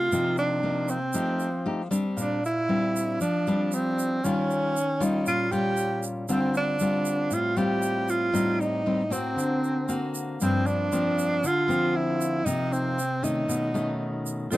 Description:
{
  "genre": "bossa nova",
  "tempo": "117 BPM",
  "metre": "4/4",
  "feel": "straight",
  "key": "unclear",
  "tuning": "A4 = 440 Hz",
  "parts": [
    { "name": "breathy tenor saxophone", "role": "melody", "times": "0.0-14.6 s", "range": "C4 to G4", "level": "-26 LUFS", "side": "right 2 dB", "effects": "none" },
    { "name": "nylon-string guitar", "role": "accompaniment", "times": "0.0-14.6 s", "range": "G2 to G4", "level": "-27 LUFS", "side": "left 2 dB", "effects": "none" },
    { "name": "egg shaker", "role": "percussion", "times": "0.1-14.6 s", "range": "none", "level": "-39 LUFS", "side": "right 4 dB", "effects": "none" },
    { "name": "vibraphone with medium hard mallets", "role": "accompaniment", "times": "14.5-14.6 s", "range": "F4 to C5", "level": "-27 LUFS", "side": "right 2 dB", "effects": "none" }
  ],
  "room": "little or no reverb",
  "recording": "close, detailed microphones",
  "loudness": "-24 LUFS",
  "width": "side -16 dB against mid",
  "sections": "0.0-14.6 A section",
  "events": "none",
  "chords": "0.1 Cm11; 1.1 F9; 2.2 Bb69; 4.2 Eb9; 6.3 Dm7; 8.3 Am7b5; 9.4 D7b13; 10.4 Gm7; 12.5 Cm7; 13.5 B9",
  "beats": "| 0.12 0.63 1.15 1.66 | 2.18 2.69 3.20 3.72 | 4.23 4.75 5.26 5.77 | 6.29 6.80 7.32 7.83 | 8.35 8.86 9.38 9.89 | 10.40 10.92 11.43 11.95 | 12.46 12.98 13.49 14.01 | 14.52"
}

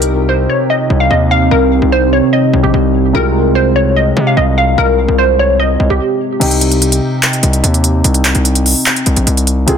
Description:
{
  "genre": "hip hop, trap",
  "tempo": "147 BPM",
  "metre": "4/4",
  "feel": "half-time",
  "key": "C minor",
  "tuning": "A4 = 439 Hz",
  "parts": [
    { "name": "glassy wavetable pluck", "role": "melody", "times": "0.0-6.4 s", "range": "G4 to F5", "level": "-14 LUFS", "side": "left 1 dB", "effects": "chorus, low-pass filter, digital delay" },
    { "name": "dark baby grand piano", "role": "accompaniment", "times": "0.0-9.8 s", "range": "C3 to Ab4", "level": "-17 LUFS", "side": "left 1 dB", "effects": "low-pass filter" },
    { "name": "deep dark ambient pad", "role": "sustained chords", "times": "0.1-6.4 s", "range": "C3 to G4", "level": "-17 LUFS", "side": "right 2 dB", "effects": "chorus, built-in reverb" },
    { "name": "distorted 808-style bass", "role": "bass", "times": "0.0-9.8 s", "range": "Bb1 to C3", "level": "-14 LUFS", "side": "equal", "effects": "distortion" },
    { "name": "trap drum kit", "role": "drums", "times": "0.0-0.1, 6.4-9.8 s", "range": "crash cymbal, handclaps, hi-hat", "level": "-14 LUFS", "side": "right 1 dB", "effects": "none" }
  ],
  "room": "light reverb, digital ambience",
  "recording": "dense, heavily limited modern master",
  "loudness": "-9 LUFS",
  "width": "side -7 dB against mid",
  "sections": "0.0-6.4 A section; 6.4-9.8 B section",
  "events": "break 6.0-6.4",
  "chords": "0.0 Cm; 3.1 Fm/C; 6.4 Cm",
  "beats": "0.29 0.70 1.11 | 1.51 1.92 2.33 2.74 | 3.15 3.56 3.96 4.37 | 4.78 5.19 5.60 6.00 | 6.41 6.82 7.23 7.64 | 8.04 8.45 8.86 9.27 | 9.68"
}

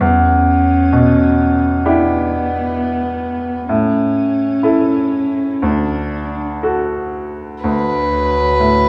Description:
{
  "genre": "neoclassical piano and strings",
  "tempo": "59-66 BPM",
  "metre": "4/4",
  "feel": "rubato",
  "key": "D major",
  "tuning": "A4 = 440 Hz",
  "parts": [
    { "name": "dark cello", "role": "second line", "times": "0.0-6.6 s", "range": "B3 to D4", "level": "-20 LUFS", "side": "equal", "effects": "none" },
    { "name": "bright grand piano", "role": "accompaniment", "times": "0.0-8.9 s", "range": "D2 to A4", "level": "-18 LUFS", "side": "equal", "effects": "none" },
    { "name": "rich violin", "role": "melody", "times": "7.6-8.9 s", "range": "B4", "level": "-17 LUFS", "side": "equal", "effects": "none" },
    { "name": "warbly tape-like pad", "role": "sustained chords", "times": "8.2-8.9 s", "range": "A3 to C#5", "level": "-26 LUFS", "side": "equal", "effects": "chorus, built-in reverb" },
    { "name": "warm double bass", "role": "bass", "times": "7.6-8.9 s", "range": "D2", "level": "-25 LUFS", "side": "equal", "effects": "none" }
  ],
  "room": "wet recital hall reverb, RT60 1.6 s",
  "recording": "recorded in a church or concert hall, small room reverb",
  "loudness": "-16 LUFS",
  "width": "mono",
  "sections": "0.0-7.6 A section; 7.6-8.9 A section",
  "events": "none",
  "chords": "0.0 Em7; 3.7 A; 5.6 D; 7.6 Dmaj7",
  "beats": "| 0.01 0.94 1.85 2.77 | 3.69 4.64 5.63 6.64 | 7.65 8.60"
}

